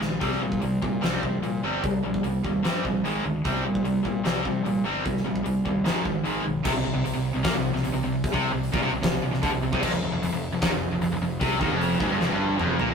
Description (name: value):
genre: hard rock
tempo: 150 BPM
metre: 4/4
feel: straight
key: unclear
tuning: A4 = 439 Hz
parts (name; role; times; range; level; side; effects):
- cranked stack guitar; riff; 0.0-12.9 s; F2 to C4; -31 LUFS; right 7 dB; overdrive
- overdriven electric guitar; riff; 0.0-12.9 s; F2 to C4; -27 LUFS; left 1 dB; none
- fuzz fingered electric bass; bass; 0.0-12.9 s; F1 to C3; -31 LUFS; left 1 dB; overdrive
- huge arena drum kit; drums; 0.0-12.9 s; crash cymbal, hi-hat, kick drum, snare drum, toms; -29 LUFS; left 1 dB; none
- high-gain distorted guitar; riff; 6.7-12.9 s; F2 to Bb3; -31 LUFS; equal; distortion
room: light reverb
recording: rough rehearsal-room recording, tube saturation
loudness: -23 LUFS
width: side -6 dB against mid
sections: 0.0-6.7 A section; 6.7-12.9 B section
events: drum fill 0.0, 12.2-12.9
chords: 0.2 C5; 3.0 Ab5; 3.4 C5; 5.9 Ab5; 6.7 Bbsus2; 9.8 F5